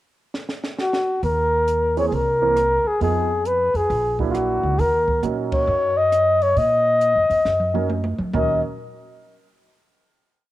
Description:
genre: jazz, small-group swing and bop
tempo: 135 BPM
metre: 4/4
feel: swing 66% on 8ths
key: Eb minor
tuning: A4 = 444 Hz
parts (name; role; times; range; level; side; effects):
- compact cocktail drum kit; drums; 0.3-8.5 s; hi-hat, kick drum, ride cymbal, rim click, snare drum, toms; -29 LUFS; right 1 dB; cassette tape
- mellow flugelhorn; melody; 0.8-8.6 s; F4 to Eb5; -18 LUFS; left 1 dB; none
- upright bass; bass; 1.2-8.6 s; Bb1 to Bb2; -26 LUFS; right 1 dB; none
- warm upright piano; accompaniment; 2.0-8.6 s; Fb3 to Bb4; -26 LUFS; right 7 dB; cassette tape
room: moderate lush hall reverb, RT60 1.7 s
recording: home recording on cassette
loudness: -18 LUFS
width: side -15 dB against mid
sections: 0.0-1.2 pickup bar; 1.2-8.3 A section; 8.3-10.1 final chord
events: drum fill 0.3-1.2, 7.5-8.3; band accent 5.4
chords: 0.0 N.C.; 1.2 Eb5; 2.1 C7; 3.0 Fm7b5; 3.9 Bbaug; 4.8 Ebm7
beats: 0.34 0.78 | 1.23 1.67 2.11 2.56 | 3.00 3.45 3.89 4.34 | 4.78 5.23 5.67 6.12 | 6.56 7.01 7.45 7.90 | 8.34

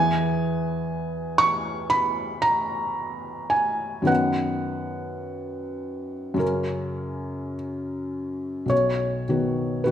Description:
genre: classical, romantic nocturne for solo piano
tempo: 51-61 BPM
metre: 4/4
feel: rubato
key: B major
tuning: A4 = 440 Hz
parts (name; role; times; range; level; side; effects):
- felt-muted upright piano; solo; 0.0-9.9 s; B1 to C#6; -23 LUFS; equal; none
room: moderate recital hall reverb, RT60 1.5 s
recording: none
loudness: -23 LUFS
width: side -10 dB against mid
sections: 0.0-8.7 A section; 8.7-9.9 B section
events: none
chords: 0.0 E; 4.1 B/F#; 6.4 F#; 8.7 B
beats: 0.89 1.92 2.98 | 4.09 5.27 6.41 7.55 | 8.72 9.85

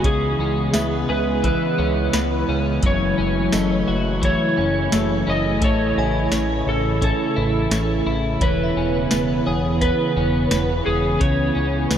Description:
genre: dream pop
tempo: 86 BPM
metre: 4/4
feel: straight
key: F# minor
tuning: A4 = 440 Hz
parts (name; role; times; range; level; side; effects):
- electric slide guitar; melody; 0.0-12.0 s; G#4 to D#5; -24 LUFS; right 1 dB; diffuse ambient delay
- hollow soft pad; sustained chords; 0.0-12.0 s; C#3 to E4; -24 LUFS; right 2 dB; chorus
- twelve-string electric guitar; arpeggios; 0.0-12.0 s; F#2 to G#4; -24 LUFS; left 4 dB; analog chorus, diffuse ambient delay
- fat analog bass; bass; 0.0-12.0 s; E1 to C#2; -25 LUFS; equal; none
- soft vintage rhythm box; drums; 0.0-12.0 s; hi-hat, kick drum, snare drum, tambourine; -23 LUFS; equal; none
- glassy synth bell; texture; 0.0-10.4 s; C#5 to C#6; -34 LUFS; right 2 dB; chorus, diffuse ambient delay
room: moderate huge ambient reverb, RT60 8.0 s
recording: dreamy mix soaked in reverb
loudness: -18 LUFS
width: side -9 dB against mid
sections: 0.0-12.0 A section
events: none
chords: 0.0 C#m7; 2.8 F#m7; 5.6 Amaj7; 8.4 E6; 11.2 C#m7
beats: | 0.04 0.74 1.44 2.14 | 2.83 3.53 4.23 4.93 | 5.63 6.32 7.02 7.72 | 8.42 9.11 9.81 10.51 | 11.21 11.90

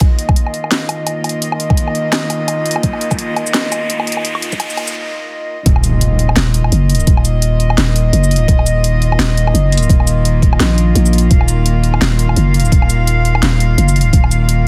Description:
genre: half-time drum and bass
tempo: 170 BPM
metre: 4/4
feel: swing 57% on 16ths, half-time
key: Eb minor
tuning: A4 = 440 Hz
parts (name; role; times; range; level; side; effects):
- rich chamber cello section; sustained chords; 0.0-14.7 s; Eb3 to F5; -22 LUFS; equal; sidechain pumping, low-pass filter
- drum and bass drum kit; drums; 0.0-14.6 s; hi-hat, shaker, snare drum, woodblock; -21 LUFS; equal; overdrive
- electronic kick drum; drums; 0.0-14.2 s; none; -14 LUFS; equal; overdrive
- riser and impact; sound effects; 0.0-7.1 s; none; -27 LUFS; equal; none
- growling 808-style bass; bass; 5.7-14.7 s; Eb1 to Bb1; -15 LUFS; equal; none
room: light reverb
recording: dense, heavily limited modern master, high-pass filter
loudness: -14 LUFS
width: mono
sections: 0.0-5.7 A section; 5.7-14.7 B section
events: build-up 0.0-5.7; riser 0.0-5.0; filter sweep on cello section 0.0-5.7; filter sweep 0.0-5.7; break 5.0-5.7; drop 5.7-14.7; impact 5.7-7.1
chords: 0.0 Eb5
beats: | 0.01 0.37 0.72 1.07 | 1.42 1.78 2.13 2.48 | 2.84 3.19 3.54 3.90 | 4.25 4.60 4.95 5.31 | 5.66 6.01 6.37 6.72 | 7.07 7.42 7.78 8.13 | 8.48 8.84 9.19 9.54 | 9.89 10.25 10.60 10.95 | 11.31 11.66 12.01 12.37 | 12.72 13.07 13.42 13.78 | 14.13 14.48

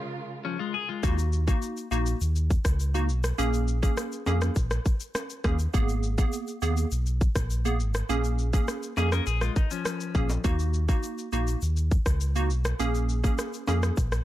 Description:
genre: dancehall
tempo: 102 BPM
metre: 4/4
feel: straight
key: Bb phrygian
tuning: A4 = 441 Hz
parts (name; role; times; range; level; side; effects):
- warm studio string section; sustained chords; 0.0-1.0 s; Db3 to Bb4; -38 LUFS; right 1 dB; sidechain pumping
- clean electric guitar; arpeggios; 0.4-1.2, 9.0-10.4 s; F3 to Bb4; -31 LUFS; left 8 dB; wide subtle chorus
- wavetable chord stab; accompaniment; 1.0-14.0 s; Bb3 to Ab4; -30 LUFS; right 2 dB; none
- sub bass with octave; bass; 1.0-14.2 s; Ab1 to F2; -26 LUFS; equal; none
- island pop drum kit; drums; 1.0-14.2 s; kick drum, rim click, shaker; -28 LUFS; equal; none
- egg shaker and timbales; percussion; 1.0-14.2 s; none; -40 LUFS; left 1 dB; none
room: little or no reverb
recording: dark, warm production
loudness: -24 LUFS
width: side -14 dB against mid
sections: 0.0-1.0 A section; 1.0-14.2 B section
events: break 0.0-1.0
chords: 0.0 Bbm7; 1.0 Ebm; 3.4 Bbm7; 5.7 Abmadd9; 8.1 Bbm7; 10.4 Ebm; 12.8 Bbm7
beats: 0.45 | 1.03 1.62 2.21 2.80 | 3.39 3.98 4.56 5.15 | 5.74 6.33 6.92 7.50 | 8.09 8.68 9.27 9.86 | 10.45 11.03 11.62 12.21 | 12.80 13.39 13.97

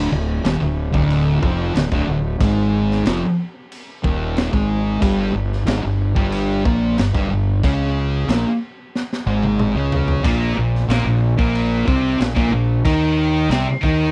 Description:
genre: stoner and doom metal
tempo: 92 BPM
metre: 4/4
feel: straight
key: D phrygian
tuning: A4 = 440 Hz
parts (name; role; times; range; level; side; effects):
- thick fuzz guitar; riff; 0.0-14.1 s; D2 to Eb4; -21 LUFS; equal; distortion
- fuzz fingered electric bass; bass; 0.0-14.1 s; D1 to Eb2; -24 LUFS; equal; overdrive
- raw garage drum kit; drums; 0.4-14.0 s; crash cymbal, kick drum, snare drum, toms; -26 LUFS; equal; none
- high-gain distorted guitar; riff; 10.2-14.1 s; Bb2 to Eb4; -26 LUFS; equal; distortion
room: little or no reverb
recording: dry, close 1970s-style studio recording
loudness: -19 LUFS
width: mono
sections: 0.0-14.1 A section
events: drum fill 8.9-10.2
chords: 0.0 Dm; 5.0 Gdim; 10.2 Bb5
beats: 0.45 1.10 1.76 | 2.41 3.06 3.71 4.37 | 5.02 5.67 6.33 6.98 | 7.63 8.29 8.94 9.59 | 10.24 10.90 11.55 12.20 | 12.86 13.51

